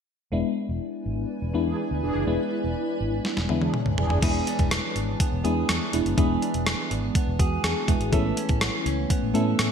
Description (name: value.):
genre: 1980s-style pop.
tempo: 123 BPM.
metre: 4/4.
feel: straight.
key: E mixolydian.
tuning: A4 = 440 Hz.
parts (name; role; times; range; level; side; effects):
FM electric piano with auto-pan; accompaniment; 0.3-9.7 s; G#3 to G#4; -27 LUFS; left 2 dB; phaser.
granular cloud pad; sustained chords; 1.2-4.2 s; E4 to G#5; -34 LUFS; equal; built-in reverb, lush chorus.
vintage muted fingered electric bass; bass; 0.3-9.7 s; E1 to A2; -29 LUFS; equal; none.
mellow synth brass; stabs; 1.7-4.2 s; E3 to G#4; -32 LUFS; right 2 dB; chorus, phaser, digital delay.
clean 12-bit digital drum machine; drums; 3.2-9.7 s; crash cymbal, hi-hat, kick drum, rim click, snare drum, toms; -25 LUFS; equal; overdrive, gated reverb.
direct-recorded clean electric guitar; riff; 4.2-9.7 s; E3 to A4; -31 LUFS; right 5 dB; lush chorus, digital delay.
room: moderate lush hall reverb, RT60 1.6 s.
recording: bright 1980s-style digital production.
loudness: -22 LUFS.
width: side -7 dB against mid.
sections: 0.3-4.2 A section; 4.2-9.7 B section.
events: drum fill 3.2-4.2.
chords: 0.3 E7; 8.1 Aadd9.